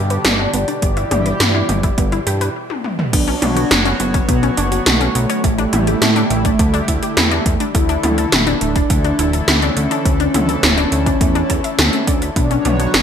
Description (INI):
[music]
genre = synthwave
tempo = 104 BPM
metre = 4/4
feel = straight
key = B minor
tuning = A4 = 439 Hz
[part]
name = mellow synth brass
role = melody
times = 0.0-13.0 s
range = A3 to D5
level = -22 LUFS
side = right 1 dB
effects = chorus, ping-pong delay, shimmer reverb
[part]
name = chorused pulse-width pad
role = sustained chords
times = 0.0-13.0 s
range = B2 to C#5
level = -24 LUFS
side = equal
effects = sidechain pumping, shimmer reverb
[part]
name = analog pluck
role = arpeggios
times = 0.0-13.0 s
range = A3 to E5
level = -23 LUFS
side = left 2 dB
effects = chorus, ping-pong delay, shimmer reverb
[part]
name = fat analog bass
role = bass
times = 0.0-13.0 s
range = D1 to A2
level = -20 LUFS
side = equal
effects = sidechain pumping
[part]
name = 80s electronic pad drums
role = drums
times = 0.1-13.0 s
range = crash cymbal, hi-hat, snare drum, toms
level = -17 LUFS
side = equal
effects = gated reverb on snare and toms, overdrive, gated reverb
[part]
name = electronic kick drum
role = drums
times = 0.8-12.5 s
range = none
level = -18 LUFS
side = equal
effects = overdrive
[sound]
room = moderate plate reverb, RT60 1.3 s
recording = bright 1980s-style digital production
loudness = -13 LUFS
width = side -8 dB against mid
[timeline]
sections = 0.0-3.1 A section; 3.1-13.0 B section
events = stop 2.6-3.1; drum fill 2.7-3.1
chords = 0.0 G; 0.8 Em/G; 3.1 Bmadd9; 5.4 A7sus4; 7.7 Dsus2; 12.4 Bmadd9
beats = 0.25 | 0.82 1.40 1.98 2.56 | 3.13 3.71 4.29 4.86 | 5.44 6.02 6.59 7.17 | 7.75 8.32 8.90 9.48 | 10.05 10.63 11.21 11.79 | 12.36 12.94